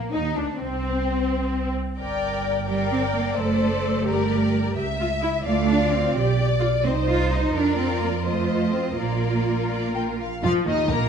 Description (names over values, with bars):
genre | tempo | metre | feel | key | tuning
quick classical-period movement for string orchestra | 86 BPM (dotted quarters) | 6/8 | straight | Bb major | A4 = 440 Hz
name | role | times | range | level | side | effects
rich studio violin section | melody | 0.0-11.1 s | Bb3 to Bb5 | -31 LUFS | left 5 dB | none
rich studio cello section | bass | 0.0-11.1 s | Eb2 to F4 | -26 LUFS | right 3 dB | none
rich studio violin section | second line | 0.1-11.1 s | C4 to E5 | -27 LUFS | left 4 dB | none
clear studio viola section | accompaniment | 0.1-11.1 s | Eb3 to Bb4 | -29 LUFS | equal | none
warm studio double bass section | bass | 0.1-11.1 s | F1 to F2 | -26 LUFS | right 4 dB | none
room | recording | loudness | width
moderate scoring stage reverb, RT60 1.5 s | nothing above 10.5 kHz | -21 LUFS | side -7 dB against mid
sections
0.0-10.4 A section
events
none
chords
0.0 Bb; 0.6 N.C.; 2.0 Gm; 3.4 D7/F#; 4.1 Gm; 4.8 C#m; 5.5 Dm; 6.1 G/B; 6.8 Cm; 7.5 Bb/F; 8.3 F7; 9.0 Bb; 10.4 Eb5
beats
| 0.59 1.29 | 1.99 2.68 | 3.37 4.07 | 4.76 5.45 | 6.14 6.84 | 7.54 8.25 | 8.98 9.70 | 10.43